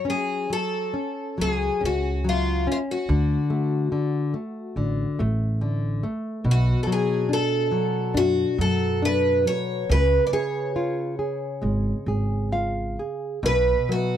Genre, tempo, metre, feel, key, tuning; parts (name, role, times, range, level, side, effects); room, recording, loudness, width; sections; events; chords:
fado-style ballad; 70 BPM; 4/4; uneven beats, rubato; F# harmonic minor; A4 = 438 Hz
picked twelve-string acoustic guitar; melody; 0.0-14.2 s; E#4 to D5; -25 LUFS; equal
nylon-string guitar; accompaniment; 0.0-14.2 s; B2 to E#5; -26 LUFS; left 2 dB
upright bass; bass; 1.4-13.7 s; G#1 to F#2; -24 LUFS; right 1 dB
little or no reverb; dry, close 1970s-style studio recording; -21 LUFS; side -10 dB against mid
0.0-14.2 A section
nylon-string guitar fill 12.1-13.4
0.0 F#m; 3.1 D; 6.5 Bm7; 9.9 C#; 13.4 B5